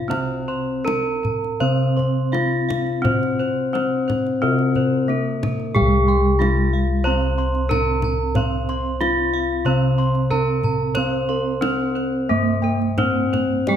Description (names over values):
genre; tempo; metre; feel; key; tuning
Javanese gamelan; 78-92 BPM; 4/4; straight; unclear; A4 = 441 Hz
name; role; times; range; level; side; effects
gamelan-type bronze metallophone; melody; 0.0-13.8 s; Bb3-45c to C5; -22 LUFS; left 1 dB; none
gamelan-type bronze metallophone; accompaniment; 0.0-13.8 s; C3 to C4; -26 LUFS; right 6 dB; none
gamelan-type bronze metallophone; arpeggios; 0.0-13.8 s; Bb4-45c to C6; -30 LUFS; right 3 dB; none
gamelan-type bossed gongs; bass; 0.0-13.8 s; C2 to C5; -23 LUFS; left 1 dB; none
gamelan-type bossed gongs; arpeggios; 0.1-13.8 s; Bb4-45c to C6; -30 LUFS; left 4 dB; none
kendang; percussion; 0.1-13.8 s; none; -27 LUFS; left 1 dB; none
room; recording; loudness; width
wet recital hall reverb, RT60 1.4 s; none; -18 LUFS; side -9 dB against mid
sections
0.0-5.8 A section; 5.8-13.8 B section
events
none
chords
none